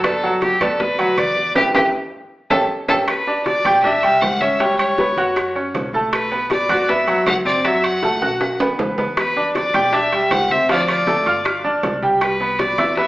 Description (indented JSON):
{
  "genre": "latin, salsa",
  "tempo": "158 BPM",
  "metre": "4/4",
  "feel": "straight",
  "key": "unclear",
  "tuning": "A4 = 440 Hz",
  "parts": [
    { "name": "clear fiddle", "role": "melody", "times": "0.0-13.1 s", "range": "G4 to F#5", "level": "-19 LUFS", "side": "left 1 dB", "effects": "none" },
    { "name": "bright concert grand piano", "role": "accompaniment", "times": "0.0-13.1 s", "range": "F3 to G6", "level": "-19 LUFS", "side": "right 1 dB", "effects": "none" },
    { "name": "upright bass", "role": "bass", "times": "0.0-13.1 s", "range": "G1 to F#2", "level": "-35 LUFS", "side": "equal", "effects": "none" },
    { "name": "bongos", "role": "percussion", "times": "0.0-13.1 s", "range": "none", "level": "-27 LUFS", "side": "left 2 dB", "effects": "none" },
    { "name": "claves", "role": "percussion", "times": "0.0-13.0 s", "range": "none", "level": "-31 LUFS", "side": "left 1 dB", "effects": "none" },
    { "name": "congas", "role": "percussion", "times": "0.0-13.1 s", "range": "none", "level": "-31 LUFS", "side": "equal", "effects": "none" },
    { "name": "timbales", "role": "percussion", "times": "0.0-13.0 s", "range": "none", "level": "-25 LUFS", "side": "right 2 dB", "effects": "none" }
  ],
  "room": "wet large studio reverb, RT60 1.1 s",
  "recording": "band playing live in one room, AM radio sound",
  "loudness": "-15 LUFS",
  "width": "side -17 dB against mid",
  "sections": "0.0-3.1 A section; 3.1-13.1 B section",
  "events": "band accent 1.6-3.1; drum fill 2.1-3.1, 8.2-9.2",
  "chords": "0.0 Gmaj7; 1.6 Em; 2.3 A7; 3.1 Em7; 4.6 Gmaj7#11/C#; 5.4 F#5; 6.1 Bm7; 7.6 B7sus4; 8.4 B; 9.2 Em7; 10.7 Dm; 11.5 Gsus2; 12.2 Cmaj9"
}